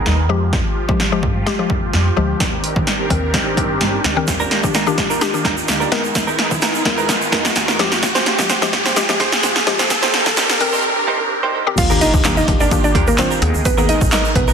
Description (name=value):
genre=dance-pop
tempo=128 BPM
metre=4/4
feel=straight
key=Eb major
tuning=A4 = 442 Hz
part: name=filtered supersaw swell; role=sustained chords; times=0.0-14.5 s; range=Eb3 to Eb5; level=-24 LUFS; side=right 1 dB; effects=phaser, sidechain pumping
part: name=riser and impact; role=sound effects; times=0.7-13.7 s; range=none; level=-24 LUFS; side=right 1 dB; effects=none
part: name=upright bass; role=bass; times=0.1-14.5 s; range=G1 to F3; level=-22 LUFS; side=equal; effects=sidechain pumping
part: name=punchy analog drum machine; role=drums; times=0.1-14.5 s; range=crash cymbal, handclaps, hi-hat, kick drum, snare drum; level=-17 LUFS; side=equal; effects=none
part: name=mallet-like synth pluck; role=accompaniment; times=0.3-14.3 s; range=Eb3 to Bb4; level=-22 LUFS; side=left 6 dB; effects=chorus, sidechain pumping
part: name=direct-recorded clean electric guitar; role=riff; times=4.3-14.5 s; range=G3 to C5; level=-23 LUFS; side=right 5 dB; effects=lush chorus
part: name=egg shaker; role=percussion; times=4.3-14.5 s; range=none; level=-29 LUFS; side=right 7 dB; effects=none
part: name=mallet-like synth pluck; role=melody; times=11.8-14.4 s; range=Bb3 to F5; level=-19 LUFS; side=right 1 dB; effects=chorus, sidechain pumping, tape echo
room=moderate digital room reverb, RT60 1.1 s, digital ambience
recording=dense, heavily limited modern master, high-pass filter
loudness=-14 LUFS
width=side -6 dB against mid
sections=0.0-11.8 A section; 11.8-14.5 B section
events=build-up 0.0-11.8; drum fill 0.0-10.8; filter sweep 0.0-11.8; riser 0.7-11.8; break 10.8-11.8; drop 11.8-14.5; impact 11.8-13.7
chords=0.3 Fmadd9; 2.4 Cm7/Eb; 4.3 Ebmaj7; 5.9 Abmadd9/Eb; 7.8 Fmadd9; 9.9 Cm7/Eb; 11.8 Ebmaj7; 13.4 Abmadd9